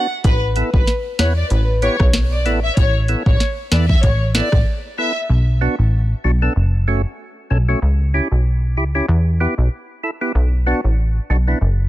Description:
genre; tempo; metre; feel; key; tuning
dancehall; 95 BPM; 4/4; swing 56% on 16ths; B minor; A4 = 440 Hz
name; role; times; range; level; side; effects
dark studio violin section; melody; 0.0-5.1 s; B4 to E5; -22 LUFS; left 1 dB; none
percussive tonewheel organ; accompaniment; 0.0-11.6 s; A3 to B4; -24 LUFS; right 1 dB; slow rotary speaker, sidechain pumping
plucky analog bass; bass; 0.2-11.9 s; F#1 to E2; -16 LUFS; equal; none
afro-pop drum kit; drums; 0.2-4.7 s; hi-hat, kick drum, rim click, snare drum; -17 LUFS; equal; none
room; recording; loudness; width
little or no reverb; none; -15 LUFS; side -15 dB against mid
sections
0.0-5.3 A section; 5.3-11.9 B section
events
break 4.7-5.3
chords
0.2 Asus2; 5.3 Bm; 6.6 F#m; 7.8 C#dim; 9.1 Em; 10.4 Bm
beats
| 0.25 0.88 1.51 2.14 | 2.77 3.40 4.04 4.67 | 5.30 5.93 6.56 7.19 | 7.82 8.46 9.09 9.72 | 10.35 10.98 11.61

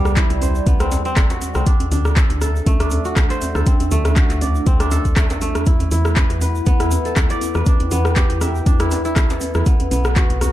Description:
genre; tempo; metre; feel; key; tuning
afro house; 120 BPM; 4/4; swing 55% on 16ths; E minor; A4 = 439 Hz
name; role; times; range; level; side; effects
dark analog pad; sustained chords; 0.0-10.5 s; G3 to G5; -28 LUFS; left 1 dB; chorus, phaser, sidechain pumping
kora; arpeggios; 0.0-10.5 s; G3 to E5; -24 LUFS; right 1 dB; sidechain pumping, digital delay
woody FM bass; bass; 0.0-10.5 s; G1 to E2; -20 LUFS; equal; sidechain pumping
deep house drum kit; drums; 0.1-10.5 s; handclaps, hi-hat, rim click; -25 LUFS; left 1 dB; overdrive
tube shaker; percussion; 0.1-10.5 s; none; -36 LUFS; right 3 dB; none
electronic kick drum; drums; 0.2-10.3 s; none; -16 LUFS; equal; none
djembe; percussion; 0.2-10.5 s; none; -26 LUFS; right 1 dB; none
room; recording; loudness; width
small room ambience; dark, warm production; -15 LUFS; side -14 dB against mid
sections
0.0-10.5 A section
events
none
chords
0.0 Cmaj7; 1.7 Dadd9; 5.7 Em7; 9.7 B5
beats
0.17 0.67 1.17 | 1.67 2.17 2.67 3.17 | 3.67 4.17 4.67 5.17 | 5.67 6.17 6.67 7.17 | 7.67 8.16 8.66 9.16 | 9.66 10.16

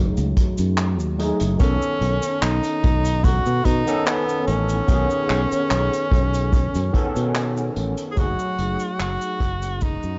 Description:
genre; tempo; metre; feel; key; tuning
vaporwave; 73 BPM; 4/4; swing 54% on 16ths; unclear; A4 = 440 Hz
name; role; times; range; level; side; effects
overdriven tine electric piano; accompaniment; 0.0-10.2 s; D#3 to A4; -28 LUFS; equal; ensemble chorus, vintage 12-bit sampler grit
fretless electric bass; bass; 0.0-10.2 s; F#1 to B2; -25 LUFS; equal; none
unplugged drum kit; drums; 0.2-10.2 s; cabasa, handclaps, hi-hat; -32 LUFS; equal; none
kick drum; drums; 0.4-10.0 s; none; -23 LUFS; equal; none
breathy tenor saxophone; melody; 1.6-10.2 s; B3 to G#4; -27 LUFS; equal; tape echo
room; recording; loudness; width
small room ambience; cassette tape, nothing above 7.8 kHz; -21 LUFS; mono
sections
0.0-10.2 A section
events
fade-out 6.0-10.2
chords
0.0 F#m69; 1.6 B9; 8.2 F#m69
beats
0.78 | 1.60 2.42 3.24 4.06 | 4.89 5.71 6.53 7.35 | 8.17 8.99 9.82

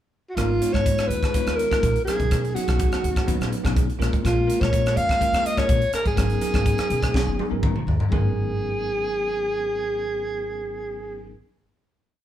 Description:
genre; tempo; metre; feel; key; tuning
electric jazz fusion; 124 BPM; 4/4; straight; G# dorian; A4 = 439 Hz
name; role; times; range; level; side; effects
breathy alto saxophone; melody; 0.3-11.3 s; E#4 to E#5; -24 LUFS; equal; slapback echo
bell-like tine electric piano; accompaniment; 0.4-11.3 s; F#3 to A#5; -29 LUFS; left 1 dB; fast stereo tremolo
upright bass; bass; 0.4-11.3 s; F#1 to B2; -26 LUFS; equal; none
crisp fusion drum kit; drums; 0.4-8.2 s; hi-hat, kick drum, rim click, snare drum, toms; -25 LUFS; equal; none
room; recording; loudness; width
light reverb; band playing live in one room; -20 LUFS; side -11 dB against mid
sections
0.0-0.4 pickup bar; 0.4-8.1 A section; 8.1-12.0 final chord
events
drum fill 7.2-8.1; tine electric piano fill 7.4-8.1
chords
0.4 G#m69; 2.1 Bmaj9; 4.0 A#m7; 6.2 G#m11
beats
| 0.38 0.86 1.35 1.83 | 2.31 2.80 3.28 3.77 | 4.25 4.73 5.22 5.70 | 6.18 6.67 7.15 7.63 | 8.12 8.60 9.09 9.57 | 10.06 10.54 11.03

